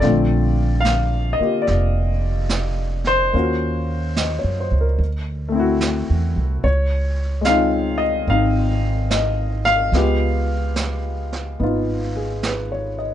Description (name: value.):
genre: jazz ballad.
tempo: 73 BPM.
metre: 4/4.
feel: swing 66% on 8ths.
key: unclear.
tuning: A4 = 440 Hz.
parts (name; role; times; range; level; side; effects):
warm grand piano; accompaniment; 0.0-13.1 s; D3 to F5; -20 LUFS; left 2 dB; none.
upright bass; bass; 0.0-13.1 s; F1 to Gb2; -21 LUFS; right 1 dB; none.
jazz brush drum kit; drums; 0.0-13.1 s; brushed snare drum, hi-hat, snare drum; -28 LUFS; right 4 dB; none.
room: little or no reverb.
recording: nothing above 10.6 kHz.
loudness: -18 LUFS.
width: side -11 dB against mid.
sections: 0.0-13.1 A section.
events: none.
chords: 0.0 Bbmaj9; 3.3 Ebm7; 5.0 D9; 6.6 Dbmaj9; 9.9 Db7#11.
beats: | 0.03 0.86 1.69 2.51 | 3.34 4.16 4.99 5.81 | 6.63 7.45 8.27 9.10 | 9.93 10.76 11.59 12.44.